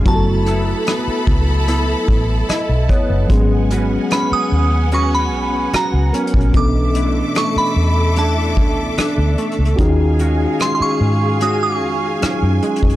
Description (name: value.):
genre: contemporary R&B.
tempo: 74 BPM.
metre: 4/4.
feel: straight.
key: unclear.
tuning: A4 = 440 Hz.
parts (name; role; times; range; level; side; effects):
glassy synth bell; melody; 0.0-13.0 s; A5 to E#6; -22 LUFS; right 2 dB; chorus, tremolo.
mellow tine electric piano; accompaniment; 0.0-13.0 s; E3 to D#5; -22 LUFS; left 1 dB; slow stereo tremolo.
clear studio string section; sustained chords; 0.0-13.0 s; B3 to D6; -24 LUFS; equal; none.
semi-hollow electric guitar; arpeggios; 0.0-13.0 s; B2 to B4; -23 LUFS; right 2 dB; ensemble chorus, tape echo.
vintage muted fingered electric bass; bass; 0.0-13.0 s; E#1 to G#2; -17 LUFS; equal; none.
vintage brush drum kit; drums; 0.1-13.0 s; hi-hat, kick drum, rim click; -18 LUFS; equal; none.
room: small room ambience.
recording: dry, gritty hardware recording.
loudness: -14 LUFS.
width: side -15 dB against mid.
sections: 0.0-13.0 A section.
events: none.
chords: 0.1 F#m7; 3.3 G#m11; 6.5 Bm11; 9.8 D#m11.